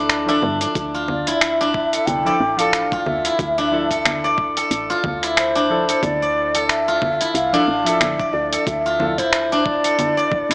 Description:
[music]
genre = organic downtempo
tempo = 91 BPM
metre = 4/4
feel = swing 57% on 16ths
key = D minor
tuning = A4 = 444 Hz
[part]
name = breathy mellow ney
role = melody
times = 0.0-10.5 s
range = A4 to G5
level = -21 LUFS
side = equal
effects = vintage 12-bit sampler grit, analog delay
[part]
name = steel-string zither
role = arpeggios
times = 0.0-10.5 s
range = E3 to D5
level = -20 LUFS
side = equal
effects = analog delay
[part]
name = woody FM bass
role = bass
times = 0.0-10.5 s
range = D1 to G2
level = -30 LUFS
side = equal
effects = none
[part]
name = dusty soul sampler-style drum kit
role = drums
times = 0.1-10.5 s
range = cabasa, congas, finger snaps, hi-hat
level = -22 LUFS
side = equal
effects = overdrive, studio reverb
[part]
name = deep mellow chord stab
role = accompaniment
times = 0.3-9.1 s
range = F3 to E5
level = -26 LUFS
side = equal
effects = chorus, cassette tape, sidechain pumping, analog delay
[part]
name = electronic kick drum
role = drums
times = 0.8-10.5 s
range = none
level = -28 LUFS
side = equal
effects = overdrive, studio reverb
[sound]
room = light reverb, digital ambience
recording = dry, gritty hardware recording, cassette tape, small speaker sound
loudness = -16 LUFS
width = side -25 dB against mid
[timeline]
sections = 0.0-10.5 A section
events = none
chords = 0.0 Dmadd9

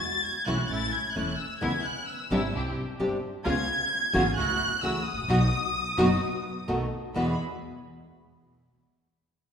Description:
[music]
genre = tango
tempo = 130 BPM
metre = 4/4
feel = rubato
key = E major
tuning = A4 = 439 Hz
[part]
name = dark studio violin section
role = second line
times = 0.0-7.4 s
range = B5 to A6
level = -30 LUFS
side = left 1 dB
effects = none
[part]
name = nylon-string guitar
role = accompaniment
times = 0.5-7.3 s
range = E2 to G#4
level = -28 LUFS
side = left 1 dB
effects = none
[part]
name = muted chamber string section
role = stabs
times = 0.5-7.3 s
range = G#3 to A4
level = -34 LUFS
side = right 1 dB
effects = none
[part]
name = upright bass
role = bass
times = 0.5-7.3 s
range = E1 to E2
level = -33 LUFS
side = right 1 dB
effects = none
[sound]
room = wet concert hall reverb, RT60 1.9 s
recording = minimal, uncompressed stereo recording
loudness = -25 LUFS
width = side -7 dB against mid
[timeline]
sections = 0.0-7.1 A section; 7.1-9.0 B section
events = violin section solo 0.0-7.1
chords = 0.0 Eadd9; 0.7 A; 1.6 C#m7; 2.5 Csus2; 3.5 C#7; 4.4 F#m7/C#; 5.3 B; 6.7 B7; 7.1 Eadd9

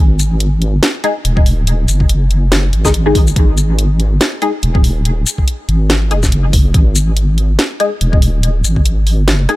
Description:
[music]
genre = deep dubstep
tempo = 142 BPM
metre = 4/4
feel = swing 57% on 16ths, half-time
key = unclear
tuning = A4 = 439 Hz
[part]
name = deep soft wobble bass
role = bass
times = 0.0-9.5 s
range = D#1 to G#1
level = -13 LUFS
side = equal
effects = chorus
[part]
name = garage drum kit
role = drums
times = 0.2-9.6 s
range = hi-hat, rim click, shaker, snare drum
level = -17 LUFS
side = equal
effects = none
[part]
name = filtered dub chord stab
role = stabs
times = 1.0-9.6 s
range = G#3 to G#4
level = -20 LUFS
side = left 3 dB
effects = phaser, ensemble chorus, dub echo
[part]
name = electronic kick drum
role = drums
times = 1.4-8.8 s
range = none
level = -12 LUFS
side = equal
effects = none
[sound]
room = digital ambience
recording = none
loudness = -11 LUFS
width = side -18 dB against mid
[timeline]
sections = 0.0-9.6 A section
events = none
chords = 0.0 G#5

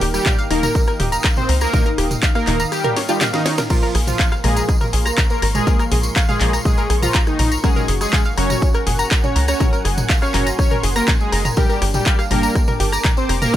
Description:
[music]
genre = melodic techno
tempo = 122 BPM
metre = 4/4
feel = straight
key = Bb minor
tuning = A4 = 441 Hz
[part]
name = dark analog pad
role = sustained chords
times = 0.1-13.6 s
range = Bb4 to Eb6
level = -30 LUFS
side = right 1 dB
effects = chorus, sidechain pumping
[part]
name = analog pluck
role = arpeggios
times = 0.0-13.6 s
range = F4 to Bb6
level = -25 LUFS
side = equal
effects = chorus, sidechain pumping, digital delay
[part]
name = synth brass stab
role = stabs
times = 0.0-13.6 s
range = Bb2 to G4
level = -27 LUFS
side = left 3 dB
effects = chorus, phaser, sidechain pumping, digital delay
[part]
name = tight sequencer bass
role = bass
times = 0.0-13.5 s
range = Eb1 to Db2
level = -20 LUFS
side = equal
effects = sidechain pumping
[part]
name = house drum kit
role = drums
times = 0.0-13.6 s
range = crash cymbal, handclaps, hi-hat, rim click, snare drum, toms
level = -23 LUFS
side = equal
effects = sidechain pumping on hats, sidechain pumping on toms, sidechain pumping on cymbals
[part]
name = analog synth brass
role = melody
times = 0.1-13.6 s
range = Eb3 to Db5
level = -23 LUFS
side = equal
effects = chorus, sidechain pumping, digital delay
[part]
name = tambourine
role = percussion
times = 0.1-13.6 s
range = none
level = -30 LUFS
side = right 1 dB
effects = none
[part]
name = electronic kick drum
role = drums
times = 0.3-13.6 s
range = none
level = -17 LUFS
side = equal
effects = none
[sound]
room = digital ambience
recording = none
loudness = -15 LUFS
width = side -12 dB against mid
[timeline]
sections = 0.0-13.6 A section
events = drum fill 3.0-3.7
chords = 0.0 Ebadd9; 3.7 Bbmadd9; 7.6 Gbadd9; 11.6 Gmadd9

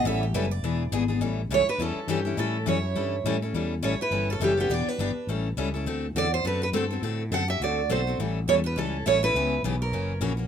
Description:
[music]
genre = acoustic string swing (jazz manouche)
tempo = 207 BPM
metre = 4/4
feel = swing 58% on 8ths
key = A mixolydian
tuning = A4 = 440 Hz
[part]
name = picked steel-string acoustic guitar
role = second line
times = 0.0-10.2 s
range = B3 to E5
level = -35 LUFS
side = right 6 dB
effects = none
[part]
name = picked steel-string acoustic guitar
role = accompaniment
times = 0.0-10.5 s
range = C#3 to A4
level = -29 LUFS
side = left 5 dB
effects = none
[part]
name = fretless electric bass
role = bass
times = 0.0-10.5 s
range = E1 to A2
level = -29 LUFS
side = equal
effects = none
[part]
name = picked steel-string acoustic guitar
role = melody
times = 1.5-10.2 s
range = G4 to F#5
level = -26 LUFS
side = right 3 dB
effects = none
[sound]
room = light reverb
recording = minimal, uncompressed stereo recording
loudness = -24 LUFS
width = side -8 dB against mid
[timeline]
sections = 0.0-1.2 A section; 1.2-10.5 B section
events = steel-string acoustic guitar solo 0.0-1.2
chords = 0.1 A7; 0.6 E7; 1.2 A7; 4.7 Em7; 5.3 A7; 5.9 D7; 8.2 A7; 9.3 C#m7b5; 9.9 F#7

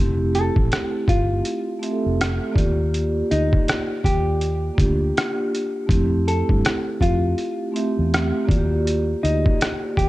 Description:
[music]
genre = lo-fi hip hop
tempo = 81 BPM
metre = 4/4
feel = swing 63% on 16ths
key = F major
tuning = A4 = 440 Hz
[part]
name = vibraphone with soft mallets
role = accompaniment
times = 0.0-10.1 s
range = A3 to E5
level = -24 LUFS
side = right 1 dB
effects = cassette tape, low-pass filter
[part]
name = vintage muted fingered electric bass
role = bass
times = 0.0-10.1 s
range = F1 to G2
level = -22 LUFS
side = equal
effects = none
[part]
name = trip hop sampler-style drum kit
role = drums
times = 0.3-10.1 s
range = hi-hat, kick drum, rim click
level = -22 LUFS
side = equal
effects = vintage 12-bit sampler grit
[part]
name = hollow-body jazz guitar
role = melody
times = 0.4-10.1 s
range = Eb4 to A4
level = -26 LUFS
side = equal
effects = low-pass filter
[sound]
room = light reverb, digital ambience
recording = cassette tape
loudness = -18 LUFS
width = side -17 dB against mid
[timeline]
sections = 0.0-10.1 A section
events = none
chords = 0.0 Fmaj9; 2.6 Ebmaj9; 5.9 Fmaj9; 8.5 Ebmaj9

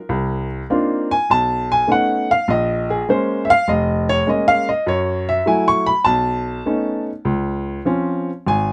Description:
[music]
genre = solo jazz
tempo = 100 BPM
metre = 4/4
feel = swing 68% on 8ths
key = unclear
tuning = A4 = 440 Hz
[part]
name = warm upright piano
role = solo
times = 0.0-8.7 s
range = F1 to Db6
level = -18 LUFS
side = equal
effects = none
[sound]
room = little or no reverb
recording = close, detailed microphones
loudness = -19 LUFS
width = mono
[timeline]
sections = 0.0-8.7 A section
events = upright piano solo 0.0-8.7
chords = 0.1 Cm11; 1.3 Cb9; 2.5 Bbm7; 4.9 Gbm7; 6.1 Cb9; 7.3 Dbmaj7

